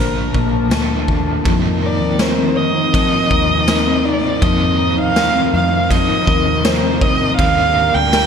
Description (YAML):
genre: dream pop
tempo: 81 BPM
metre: 4/4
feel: straight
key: unclear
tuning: A4 = 442 Hz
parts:
  - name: dark violin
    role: melody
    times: 0.0-8.3 s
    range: Bb4 to G5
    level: -18 LUFS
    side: right 2 dB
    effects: ping-pong delay
  - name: overdriven semi-hollow guitar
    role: accompaniment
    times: 0.0-8.3 s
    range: F2 to A4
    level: -23 LUFS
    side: right 2 dB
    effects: tremolo, lush chorus
  - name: warbly tape-like pad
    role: sustained chords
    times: 0.0-8.3 s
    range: D3 to A5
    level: -22 LUFS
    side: equal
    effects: chorus, built-in reverb
  - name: mellow electric guitar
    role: arpeggios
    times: 0.0-8.3 s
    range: Bb2 to Bb4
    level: -21 LUFS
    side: left 6 dB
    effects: analog chorus, ping-pong delay
  - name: vintage muted fingered electric bass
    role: bass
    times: 0.0-8.3 s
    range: Bb1 to F2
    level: -22 LUFS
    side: equal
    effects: none
  - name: raw garage drum kit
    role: drums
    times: 0.3-8.3 s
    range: hi-hat, kick drum, ride cymbal, snare drum, tambourine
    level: -20 LUFS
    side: equal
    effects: gated reverb
room: moderate plate reverb, RT60 2.5 s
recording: bright 1980s-style digital production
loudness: -13 LUFS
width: side -7 dB against mid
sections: 0.0-1.5 A section; 1.5-8.3 B section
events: none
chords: 0.0 Bbmaj7; 1.5 F7sus4; 7.4 Ebmaj7